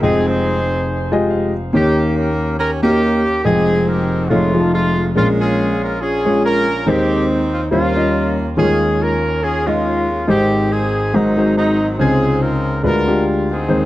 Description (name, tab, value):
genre	gospel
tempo	140 BPM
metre	4/4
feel	swing 56% on 8ths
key	unclear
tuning	A4 = 439 Hz
part	clear horn section	melody	0.0-13.9 s	Gb3 to C5	-18 LUFS	equal	tape echo
part	warm concert grand piano	accompaniment	0.0-13.9 s	F1 to A5	-16 LUFS	left 1 dB	none
room	light reverb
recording	dry, close 1970s-style studio recording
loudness	-14 LUFS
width	side -15 dB against mid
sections	0.0-13.9 A section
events	grand piano fill 0.9-1.7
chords	0.0 Fm9; 1.7 Eb7; 3.4 Fm9; 4.3 F7alt; 5.2 Bbm7; 6.9 Ab/Eb; 7.7 Eb13; 8.6 Eb9sus4; 10.3 Abmaj7; 11.1 Ab7; 12.0 Dbmaj9; 12.8 Ddim7